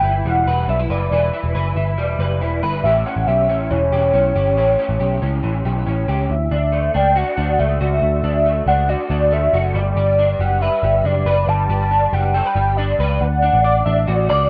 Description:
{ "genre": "jangly indie pop", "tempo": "139 BPM", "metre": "4/4", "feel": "straight", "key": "D major", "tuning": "A4 = 440 Hz", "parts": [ { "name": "warm velvety synth lead", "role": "melody", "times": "0.0-14.5 s", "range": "C#5 to A5", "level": "-21 LUFS", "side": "equal", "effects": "chorus" }, { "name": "electric guitar through a small old amp", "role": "arpeggios", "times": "0.0-14.5 s", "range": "A2 to D5", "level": "-24 LUFS", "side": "equal", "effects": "ensemble chorus" }, { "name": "vintage muted picked electric bass", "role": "bass", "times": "0.0-14.5 s", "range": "E1 to D2", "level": "-22 LUFS", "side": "equal", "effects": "none" } ], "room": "little or no reverb", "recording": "rough home demo mix", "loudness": "-18 LUFS", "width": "mono", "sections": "0.0-6.3 A section; 6.3-13.2 B section; 13.2-14.5 C section", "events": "none", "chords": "0.0 Em7; 2.8 A7; 6.3 Dadd9; 9.8 G; 13.2 D" }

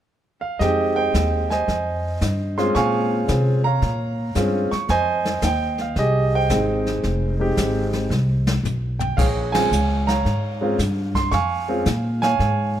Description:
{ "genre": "jazz piano trio", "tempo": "112 BPM", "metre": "4/4", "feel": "swing 68% on 8ths", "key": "F minor", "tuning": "A4 = 440 Hz", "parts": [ { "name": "clear concert grand piano", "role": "melody", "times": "0.4-12.8 s", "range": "Ab3 to Db6", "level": "-21 LUFS", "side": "right 2 dB", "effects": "none" }, { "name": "upright bass", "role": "bass", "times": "0.6-12.8 s", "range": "F1 to C3", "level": "-22 LUFS", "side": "equal", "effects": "none" }, { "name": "jazz brush drum kit", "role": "drums", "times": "0.6-12.8 s", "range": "brushed snare drum, crash cymbal, hi-hat, kick drum, ride cymbal, snare drum, toms", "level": "-27 LUFS", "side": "left 2 dB", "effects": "none" } ], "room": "light reverb", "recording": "lossy compression artefacts", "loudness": "-18 LUFS", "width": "side -11 dB against mid", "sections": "0.6-12.8 A section", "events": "drum fill 8.1-9.2; band accent 9.4", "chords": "0.0 N.C.; 0.6 Fm9; 2.7 Bbm7; 4.9 Fm9; 9.2 Bbm7" }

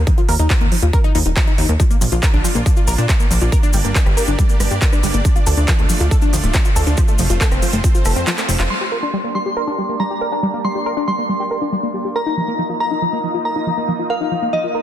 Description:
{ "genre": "uplifting trance", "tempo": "139 BPM", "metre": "4/4", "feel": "straight", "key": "G minor", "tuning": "A4 = 442 Hz", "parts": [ { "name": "plucky analog bass", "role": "bass", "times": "0.0-8.7 s", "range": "D1 to Bb2", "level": "-17 LUFS", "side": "equal", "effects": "sidechain pumping" }, { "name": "tight sequenced synth", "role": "arpeggios", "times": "0.1-14.8 s", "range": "F3 to Bb4", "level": "-22 LUFS", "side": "left 2 dB", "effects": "chorus, sidechain pumping, tape echo" }, { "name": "big-room dance drum kit", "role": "drums", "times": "0.1-8.7 s", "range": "handclaps, hi-hat, rim click", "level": "-23 LUFS", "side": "right 2 dB", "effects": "overdrive" }, { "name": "electronic kick drum", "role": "drums", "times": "0.1-7.9 s", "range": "none", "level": "-15 LUFS", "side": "equal", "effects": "none" }, { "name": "supersaw pad", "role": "sustained chords", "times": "1.8-14.8 s", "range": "A3 to Eb5", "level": "-26 LUFS", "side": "right 2 dB", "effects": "sidechain pumping, low-pass filter" }, { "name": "cabasa", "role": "percussion", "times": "1.8-8.7 s", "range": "none", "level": "-28 LUFS", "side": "left 3 dB", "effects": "none" }, { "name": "glassy synth bell", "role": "second line", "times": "8.7-14.8 s", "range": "Eb5 to C6", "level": "-22 LUFS", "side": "equal", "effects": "chorus, tremolo, vintage 12-bit sampler grit, tape echo" } ], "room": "light reverb, digital ambience", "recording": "dense, heavily limited modern master", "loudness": "-14 LUFS", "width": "side -11 dB against mid", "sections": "0.0-8.7 A section; 8.7-14.8 B section", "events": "kick drops out 8.3-8.7; drum fill 8.4-8.7; band accent 8.6; filter sweep on supersaw synth 8.7-14.8", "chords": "0.0 Ebsus2; 1.8 Bb; 3.5 Gm; 5.2 Dm; 7.0 F; 8.7 Gm; 12.2 Ebsus2" }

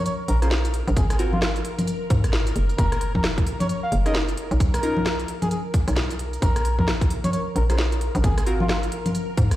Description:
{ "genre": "UK garage, two-step garage", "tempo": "132 BPM", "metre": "4/4", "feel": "swing 61% on 16ths", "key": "Bb minor", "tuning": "A4 = 441 Hz", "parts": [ { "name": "trumpet with cup mute", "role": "melody", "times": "0.0-8.8 s", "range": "F4 to F5", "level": "-30 LUFS", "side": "equal", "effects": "dub echo" }, { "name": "soft string machine", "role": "sustained chords", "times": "0.0-9.6 s", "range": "Bb4", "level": "-34 LUFS", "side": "left 2 dB", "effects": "phaser, ensemble chorus, sidechain pumping" }, { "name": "garage drum kit", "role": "drums", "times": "0.1-9.6 s", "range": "congas, hi-hat, rim click, snare drum", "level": "-26 LUFS", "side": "equal", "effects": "none" }, { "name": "hollow knocking FM bass", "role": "bass", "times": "0.3-9.6 s", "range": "Gb1 to Ab2", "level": "-22 LUFS", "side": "equal", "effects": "none" }, { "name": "deep mellow chord stab", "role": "stabs", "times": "0.4-8.6 s", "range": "C4 to C5", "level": "-30 LUFS", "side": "equal", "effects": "chorus, dub echo" }, { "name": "electronic kick drum", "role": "drums", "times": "1.0-9.5 s", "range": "none", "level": "-22 LUFS", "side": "equal", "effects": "none" } ], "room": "digital ambience", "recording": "played on a big sound system in a bare room, large studio reverb", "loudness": "-20 LUFS", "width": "side -14 dB against mid", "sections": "0.0-9.6 A section", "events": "none", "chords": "0.0 Bbm9; 1.0 Ab13; 2.6 Gb69; 4.4 Bmaj9#11; 6.4 Bbm9; 8.2 Ab13" }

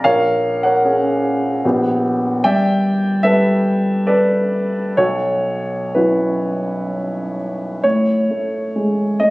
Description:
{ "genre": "classical, impressionist solo piano", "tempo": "61-76 BPM", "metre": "3/4", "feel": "rubato", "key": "unclear", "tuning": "A4 = 440 Hz", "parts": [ { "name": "warm grand piano", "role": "solo", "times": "0.0-9.3 s", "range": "A#1 to G5", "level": "-15 LUFS", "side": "equal", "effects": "none" } ], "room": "light reverb", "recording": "recorded on a phone in the room, studio reverb, compression", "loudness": "-15 LUFS", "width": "side -20 dB against mid", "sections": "0.0-7.8 A section; 7.8-9.3 B section", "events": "none", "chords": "0.0 F#add9/A#; 1.6 Bbm6; 2.4 G69; 5.0 B9sus4; 7.8 A" }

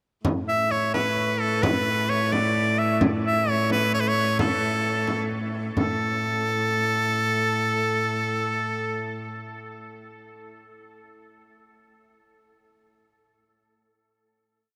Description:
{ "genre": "medieval dance", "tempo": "87 BPM (dotted quarters)", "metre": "6/8", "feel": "straight", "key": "A major", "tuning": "A4 = 440 Hz", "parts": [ { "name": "frame drum", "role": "percussion", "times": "0.2-6.0 s", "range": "none", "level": "-31 LUFS", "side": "equal", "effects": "none" }, { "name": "clear viola da gamba", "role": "drone", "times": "0.3-9.3 s", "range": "A2", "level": "-30 LUFS", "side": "equal", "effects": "none" }, { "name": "edgy shawm", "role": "melody", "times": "0.5-9.3 s", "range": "A4 to E5", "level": "-26 LUFS", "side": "equal", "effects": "none" } ], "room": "wet huge ambient reverb, RT60 8.9 s", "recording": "in a vast, echoing space", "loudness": "-24 LUFS", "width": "mono", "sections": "0.3-5.8 A section; 5.8-8.5 final note", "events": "none", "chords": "none" }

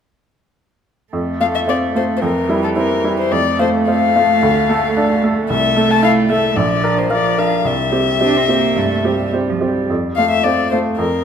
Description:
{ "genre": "quick classical-period movement for piano trio", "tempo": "110 BPM", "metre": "4/4", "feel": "rubato", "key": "F major", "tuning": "A4 = 438 Hz", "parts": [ { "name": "rich cello", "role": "second line", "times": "1.1-10.8 s", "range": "E3 to D4", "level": "-21 LUFS", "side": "right 6 dB", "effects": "none" }, { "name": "bright baby grand piano", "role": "accompaniment", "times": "1.1-11.2 s", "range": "Bb1 to Bb4", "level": "-16 LUFS", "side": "right 1 dB", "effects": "none" }, { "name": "dark violin", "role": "melody", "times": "1.4-11.2 s", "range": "A4 to A5", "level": "-18 LUFS", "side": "left 8 dB", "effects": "none" } ], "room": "moderate recital hall reverb, RT60 1.5 s", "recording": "none", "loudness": "-13 LUFS", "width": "side -8 dB against mid", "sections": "1.1-11.2 A section", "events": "none", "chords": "1.1 F; 2.2 C/F; 3.3 F; 4.4 Dm; 5.5 Am/C; 6.6 Bb; 7.7 C; 9.9 F" }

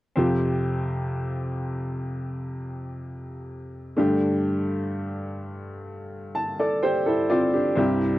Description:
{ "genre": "pop", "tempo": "63 BPM", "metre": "4/4", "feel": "straight", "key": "F major", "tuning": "A4 = 440 Hz", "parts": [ { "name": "clear upright piano", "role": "accompaniment", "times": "0.2-8.2 s", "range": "C2 to A5", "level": "-24 LUFS", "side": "equal", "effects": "none" } ], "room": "light reverb", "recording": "dry, close 1970s-style studio recording", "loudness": "-23 LUFS", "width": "side -16 dB against mid", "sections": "0.2-8.2 A section", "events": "upright piano fill 5.9-7.8", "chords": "0.2 Fsus2; 4.0 Gsus2" }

